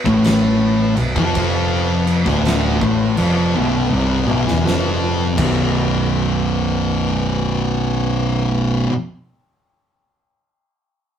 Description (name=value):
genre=stoner and doom metal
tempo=54 BPM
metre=4/4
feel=swing 65% on 8ths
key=B phrygian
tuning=A4 = 440 Hz
part: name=tonewheel organ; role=sustained chords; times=0.0-8.9 s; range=B3 to F#5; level=-31 LUFS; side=right 3 dB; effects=slow rotary speaker
part: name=thick fuzz guitar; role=riff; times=0.0-8.9 s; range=B1 to A3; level=-18 LUFS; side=left 4 dB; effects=distortion
part: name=thick fuzz guitar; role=riff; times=0.1-8.9 s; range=B1 to A3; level=-22 LUFS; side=right 8 dB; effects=distortion
part: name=growling picked electric bass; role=bass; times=0.1-8.9 s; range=B0 to A1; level=-22 LUFS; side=right 1 dB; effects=overdrive
part: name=oversized low-tuned drum kit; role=drums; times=0.1-5.6 s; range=crash cymbal, kick drum, snare drum, toms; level=-24 LUFS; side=right 1 dB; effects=none
room=light reverb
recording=rough rehearsal-room recording, tube saturation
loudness=-15 LUFS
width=side -8 dB against mid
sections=0.0-5.8 A section; 5.8-10.2 B section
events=drum fill 3.6-5.8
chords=0.0 Bm; 5.2 B5